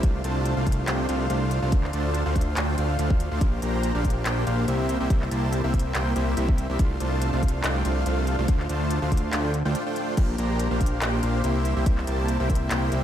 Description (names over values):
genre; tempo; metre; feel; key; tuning
future bass; 142 BPM; 4/4; swing 54% on 16ths, half-time; F major; A4 = 440 Hz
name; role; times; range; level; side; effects
dense compressed supersaw; riff; 0.0-13.0 s; A3 to Bb5; -27 LUFS; equal; sidechain pumping, diffuse ambient delay
fat analog bass; bass; 0.0-13.0 s; Bb1 to D2; -26 LUFS; equal; sidechain pumping
electronic kick drum; drums; 0.0-12.6 s; none; -22 LUFS; equal; small room ambience
trap drum kit; drums; 0.0-13.0 s; crash cymbal, handclaps, hi-hat; -32 LUFS; left 1 dB; small room ambience
room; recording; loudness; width
moderate plate reverb, RT60 1.4 s; dreamy mix soaked in reverb; -22 LUFS; side -10 dB against mid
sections
0.0-13.0 A section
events
break 9.8-10.2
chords
0.0 F6/C; 1.7 Dm7; 3.4 Bb69; 4.9 C7; 6.8 F6/C; 8.5 Dm7; 10.2 Bb69; 11.7 C7